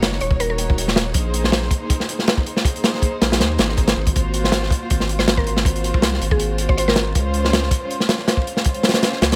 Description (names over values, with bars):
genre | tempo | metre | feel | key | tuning
drum and bass, jungle | 160 BPM | 4/4 | swing 54% on 16ths | unclear | A4 = 442 Hz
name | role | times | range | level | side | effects
dark studio string section | sustained chords | 0.0-9.4 s | Ab3 to Db5 | -28 LUFS | equal | none
saturated sub bass | bass | 0.0-9.4 s | Eb1 to Eb2 | -25 LUFS | equal | none
crunchy breakbeat drum kit | drums | 0.0-9.4 s | hi-hat, kick drum, snare drum | -20 LUFS | equal | none
mallet-like synth pluck | melody | 0.2-0.9, 5.2-7.2 s | Ab4 to Db5 | -28 LUFS | equal | chorus, cassette tape, dub echo
room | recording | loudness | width
light reverb, studio reverb | none | -19 LUFS | mono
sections
0.0-9.4 A section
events
none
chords
0.0 Ebm7; 1.2 Bb9sus4; 4.2 Ab13; 7.2 Dbmaj7